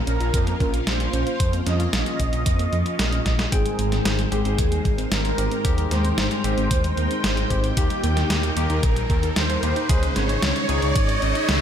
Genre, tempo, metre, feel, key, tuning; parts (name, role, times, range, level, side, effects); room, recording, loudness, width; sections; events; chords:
synthwave; 113 BPM; 4/4; straight; A4 = 440 Hz
string machine, full ensemble; sustained chords; 0.0-11.6 s; Ab3 to G5; -30 LUFS; equal; ensemble chorus, sidechain pumping
thumb-piano-like synth pluck; arpeggios; 0.0-11.6 s; Eb3 to Bb4; -32 LUFS; right 2 dB; chorus, ping-pong delay
soft supersaw; melody; 0.1-11.6 s; G4 to Eb5; -28 LUFS; right 1 dB; ping-pong delay
wide detuned saw bass; bass; 0.1-11.6 s; Ab1 to F2; -24 LUFS; equal; chorus, tube saturation
detuned 8-bit digital drum machine; drums; 0.1-11.6 s; hi-hat, snare drum; -27 LUFS; equal
electronic kick drum; drums; 0.3-11.1 s; -23 LUFS; equal
barky tine electric piano; stabs; 3.5-10.9 s; Ab2 to G5; -31 LUFS; left 4 dB
riser and reverse cymbal; sound effects; 6.9-11.6 s; -31 LUFS; equal
light reverb, digital ambience; -19 LUFS; side -9 dB against mid
0.0-3.5 A section; 3.5-11.6 B section
drum fill 3.3; filter sweep on synth arpeggio sound 3.5-11.6; riser 6.9-11.6; reverse cymbal 11.0-11.6
0.0 Bbm; 3.5 Abmaj7; 7.8 Eb; 9.9 Dbsus2